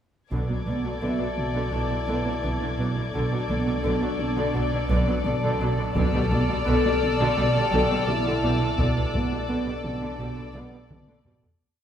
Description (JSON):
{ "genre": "cinematic, suspense film score", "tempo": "85 BPM", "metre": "4/4", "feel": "straight", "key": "unclear", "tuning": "A4 = 440 Hz", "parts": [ { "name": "dark studio violin section", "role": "melody", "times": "0.3-11.4 s", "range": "D5", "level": "-31 LUFS", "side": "left 4 dB", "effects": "none" }, { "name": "warm symphonic violin section", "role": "second line", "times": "0.3-11.4 s", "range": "A4", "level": "-33 LUFS", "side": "equal", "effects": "none" }, { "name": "warm studio viola section", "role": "accompaniment", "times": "0.3-11.5 s", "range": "D3 to G3", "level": "-32 LUFS", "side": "equal", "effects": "none" }, { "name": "smooth gliding synth bass", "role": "riff", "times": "0.3-11.5 s", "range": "B2 to B3", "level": "-29 LUFS", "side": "right 3 dB", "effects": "none" }, { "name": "rich symphonic double bass section", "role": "bass", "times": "0.3-11.3 s", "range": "B1", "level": "-31 LUFS", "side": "right 1 dB", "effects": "none" }, { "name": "warm symphonic cello section", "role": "bass", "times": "0.3-11.5 s", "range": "B2", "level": "-31 LUFS", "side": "right 1 dB", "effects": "none" }, { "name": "warm sub bass", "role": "drone", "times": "0.3-11.6 s", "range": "B1", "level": "-35 LUFS", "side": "equal", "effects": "none" }, { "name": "taiko ensemble", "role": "drums", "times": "0.3-1.7, 6.0-11.8 s", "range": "none", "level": "-30 LUFS", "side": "left 1 dB", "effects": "none" }, { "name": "dark studio violin section", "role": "texture", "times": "0.3-11.2 s", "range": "D6 to G#6", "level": "-37 LUFS", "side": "left 2 dB", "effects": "none" }, { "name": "dark French horn section", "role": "sustained chords", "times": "1.0-10.9 s", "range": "D4 to A4", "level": "-32 LUFS", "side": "left 4 dB", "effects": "none" }, { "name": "Celtic harp", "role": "texture", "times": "1.0-11.6 s", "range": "B4 to A5", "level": "-42 LUFS", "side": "left 6 dB", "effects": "none" }, { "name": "timpani", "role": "percussion", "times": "6.0-7.0 s", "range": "B2", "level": "-32 LUFS", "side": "equal", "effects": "none" } ], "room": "wet concert hall reverb, RT60 1.8 s", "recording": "heard from further back in the room", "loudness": "-22 LUFS", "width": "side -9 dB against mid", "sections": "0.3-11.6 A section", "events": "fade-out 8.8-11.6; drum fill 10.9-11.6", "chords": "0.3 Bm7; 6.0 Gadd9/B" }